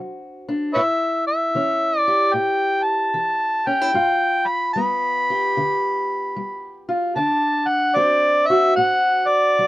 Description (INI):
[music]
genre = acoustic country blues, solo or duo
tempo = 75 BPM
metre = 4/4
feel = swing 65% on 8ths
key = D mixolydian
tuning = A4 = 441 Hz
[part]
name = fingerpicked steel-string acoustic guitar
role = accompaniment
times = 0.0-9.7 s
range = G2 to G4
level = -24 LUFS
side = left 1 dB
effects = none
[part]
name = overdriven harmonica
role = melody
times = 0.7-9.7 s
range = B4 to B5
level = -18 LUFS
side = equal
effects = none
[sound]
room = light reverb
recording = rough home demo mix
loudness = -17 LUFS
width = side -16 dB against mid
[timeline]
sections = 0.0-9.7 A section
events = none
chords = 0.0 D7; 0.8 A7; 4.0 G7; 7.2 D7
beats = | 0.75 1.55 2.35 3.15 | 3.95 4.75 5.56 6.36 | 7.16 7.97 8.77 9.58